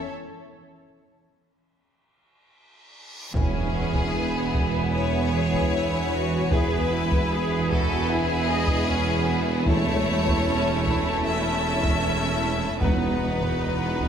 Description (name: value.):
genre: cinematic, epic orchestral film score.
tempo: 76 BPM.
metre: 4/4.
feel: straight.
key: E major.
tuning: A4 = 441 Hz.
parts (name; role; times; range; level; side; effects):
bright symphonic violin section; melody; 0.0-14.1 s; G#4 to E5; -29 LUFS; left 5 dB; none.
bright symphonic violin section; second line; 0.0-14.1 s; A3 to A4; -30 LUFS; left 2 dB; none.
clear studio viola section; accompaniment; 0.0-14.1 s; A3 to D#5; -32 LUFS; right 1 dB; none.
dark French horn section; sustained chords; 0.0-13.1 s; F#3 to E4; -36 LUFS; left 5 dB; none.
reverse cymbal and impact; sound effects; 2.9-6.5 s; none; -35 LUFS; equal; none.
clear woodwind section; sustained chords; 3.3-14.1 s; B3 to A5; -32 LUFS; equal; none.
rich symphonic double bass section; bass; 3.3-14.1 s; E1; -30 LUFS; right 3 dB; none.
warm symphonic cello section; bass; 3.3-14.1 s; E2; -30 LUFS; right 4 dB; none.
warm tuba; bass; 3.3-14.1 s; E1; -32 LUFS; right 4 dB; none.
taiko ensemble; drums; 3.4-14.1 s; none; -28 LUFS; equal; none.
timpani; percussion; 9.7-14.0 s; E2; -32 LUFS; equal; none.
room: moderate concert hall reverb, RT60 2.1 s.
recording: none.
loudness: -21 LUFS.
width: side -8 dB against mid.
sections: 0.0-3.3 A section; 3.3-14.1 A section.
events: break 0.1-3.3; reverse cymbal 2.9-3.3; impact 3.3-6.5.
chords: 0.1 N.C.; 3.3 E; 9.7 A/E; 12.8 B/E.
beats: | 0.13 0.94 1.74 2.54 | 3.34 4.14 4.94 5.73 | 6.52 7.31 8.09 8.88 | 9.67 10.46 11.24 12.02 | 12.81 13.60.